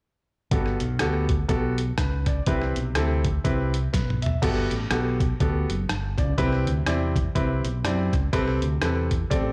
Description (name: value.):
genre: uptempo gospel.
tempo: 123 BPM.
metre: 4/4.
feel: swing 59% on 8ths.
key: G major.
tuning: A4 = 440 Hz.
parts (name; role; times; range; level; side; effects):
clear baby grand piano; accompaniment; 0.5-9.5 s; G2 to A5; -30 LUFS; equal; slapback echo.
fingered electric bass; bass; 0.5-9.5 s; F#1 to F#2; -28 LUFS; equal; none.
lo-fi sampler-style drum kit; drums; 0.5-9.4 s; crash cymbal, hi-hat, kick drum, rim click, snare drum, toms; -29 LUFS; equal; overdrive.
room: digital ambience.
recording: live gig heard through the venue's PA, club reverb.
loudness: -24 LUFS.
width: mono.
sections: 0.5-4.4 A section; 4.4-9.5 B section.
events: drum fill 3.9-4.4.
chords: 0.5 Gmaj9; 2.5 Cmaj7; 4.4 Gmaj9; 6.4 Cmaj7; 8.3 Am9/C.